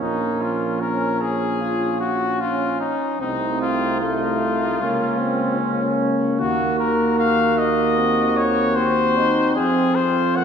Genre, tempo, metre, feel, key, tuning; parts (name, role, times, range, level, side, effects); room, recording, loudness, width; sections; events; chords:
classical, brass quintet; 75 BPM; 4/4; rubato; A4 = 439 Hz
clear trumpet; melody; 0.0-10.4 s; Eb4 to Gb5; -22 LUFS; left 6 dB
clear trumpet; second line; 0.0-10.4 s; Db4 to Gb4; -27 LUFS; right 6 dB
clear trombone; accompaniment; 0.0-10.4 s; A3 to F4; -25 LUFS; right 2 dB
mellow French horn; accompaniment; 0.0-10.4 s; F3 to C4; -27 LUFS; left 1 dB
warm tuba; bass; 0.0-10.4 s; Bb1 to F2; -25 LUFS; right 2 dB
wet scoring stage reverb, RT60 1.6 s; heard from further back in the room; -18 LUFS; side -7 dB against mid
0.0-10.4 A section
0.0 Bbm; 3.2 F7/C; 4.8 Bbm/Db; 6.4 Ebm; 8.0 Cdim/Eb; 9.6 F5